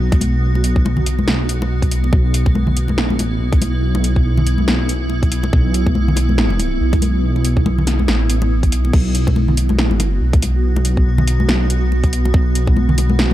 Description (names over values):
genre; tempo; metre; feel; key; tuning
deep dubstep; 141 BPM; 4/4; swing 57% on 16ths, half-time; unclear; A4 = 440 Hz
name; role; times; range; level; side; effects
granular cloud pad; sustained chords; 0.0-13.3 s; B3 to F#4; -23 LUFS; right 2 dB; built-in reverb
dark detuned saw bass; bass; 0.0-13.3 s; A1 to B1; -16 LUFS; equal; tube saturation
deep house drum kit; drums; 0.1-13.3 s; crash cymbal, hi-hat, snare drum; -22 LUFS; equal; overdrive
electronic kick drum; drums; 0.1-12.7 s; none; -15 LUFS; equal; none
congas; percussion; 0.1-13.3 s; none; -22 LUFS; left 2 dB; none
room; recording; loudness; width
little or no reverb; dark, warm production; -14 LUFS; side -14 dB against mid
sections
0.0-13.3 A section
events
none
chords
0.0 B5